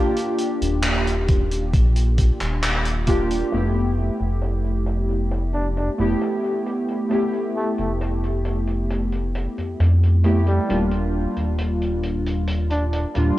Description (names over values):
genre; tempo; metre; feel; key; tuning
vaporwave; 67 BPM; 4/4; straight; F lydian; A4 = 439 Hz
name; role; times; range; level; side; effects
warbly lo-fi synth keys; accompaniment; 0.0-13.4 s; G3 to G4; -24 LUFS; equal; lush chorus, vintage 12-bit sampler grit, analog delay
loose indie drum kit; drums; 0.2-13.3 s; handclaps, hi-hat; -30 LUFS; equal; low-pass filter on hats, low-pass filter on snare, low-pass filter on room, gated reverb
chorused synth bass; bass; 0.6-13.3 s; Eb1 to F2; -21 LUFS; equal; tube saturation
electronic kick drum; drums; 1.3-3.3 s; none; -20 LUFS; equal; overdrive
warm flugelhorn; melody; 5.5-13.1 s; G3 to D4; -30 LUFS; equal; vintage 12-bit sampler grit, tape echo
room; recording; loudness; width
light reverb, small room ambience; cassette tape; -19 LUFS; side -16 dB against mid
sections
0.0-3.5 A section; 3.5-13.4 B section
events
filter sweep on drum 3.5-13.4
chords
0.0 Ebmaj9; 3.5 Fmaj9#11; 10.7 Ebmaj9